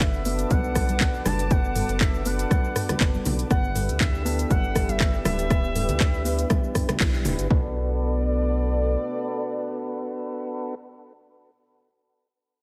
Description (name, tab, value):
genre	afro house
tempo	120 BPM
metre	4/4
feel	swing 54% on 16ths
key	B minor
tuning	A4 = 445 Hz
part	expressive portamento lead	melody	0.0-10.8 s	D5 to A5	-35 LUFS	equal	chorus, delay
part	dark analog pad	sustained chords	0.2-10.8 s	B3 to E6	-37 LUFS	equal	chorus, sidechain pumping
part	kalimba	arpeggios	0.0-7.7 s	B3 to B4	-37 LUFS	equal	sidechain pumping, delay
part	tonewheel organ	stabs	0.0-10.7 s	B3 to B4	-34 LUFS	equal	overdrive, slow rotary speaker, sidechain pumping, delay
part	smooth synth bass	bass	0.0-9.0 s	D1 to D2	-30 LUFS	equal	sidechain pumping
part	afro-pop drum kit	drums	0.0-7.5 s	handclaps, hi-hat, rim click, shaker, toms	-31 LUFS	equal	none
part	electronic kick drum	drums	0.0-7.6 s	none	-25 LUFS	equal	overdrive
part	congas	percussion	0.5-7.4 s	none	-34 LUFS	equal	none
room	digital ambience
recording	none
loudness	-24 LUFS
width	mono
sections	0.0-7.5 A section; 7.5-11.5 B section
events	drop 0.0-7.5; band accent 7.0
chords	0.0 Bm7; 3.5 G6; 7.5 Bm7